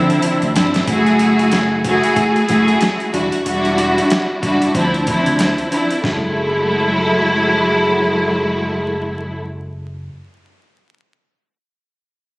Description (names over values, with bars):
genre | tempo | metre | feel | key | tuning
hip hop, boom-bap hip-hop | 93 BPM | 4/4 | swing 60% on 16ths | unclear | A4 = 440 Hz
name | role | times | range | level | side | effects
warm studio string section | accompaniment | 0.0-9.4 s | F3 to G#4 | -14 LUFS | equal | cassette tape, high-pass filter, low-pass filter
deep dub fingered electric bass | bass | 0.0-10.1 s | E1 to D3 | -25 LUFS | equal | none
boom bap sampler-style drum kit | drums | 0.1-6.2 s | hi-hat, kick drum, snare drum | -21 LUFS | equal | overdrive
room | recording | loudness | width
light reverb | recorded on a phone in the room, studio reverb, vinyl crackle, compression | -13 LUFS | side -25 dB against mid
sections
0.9-6.0 A section; 6.0-8.6 B section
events
drum fill 0.2-0.9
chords
0.0 Dm9; 0.9 F#m9; 3.1 Em9; 4.7 Dm9; 6.0 F#m9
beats
0.23 | 0.88 1.52 2.17 2.81 | 3.46 4.10 4.75 5.39 | 6.04 6.68 7.33 7.97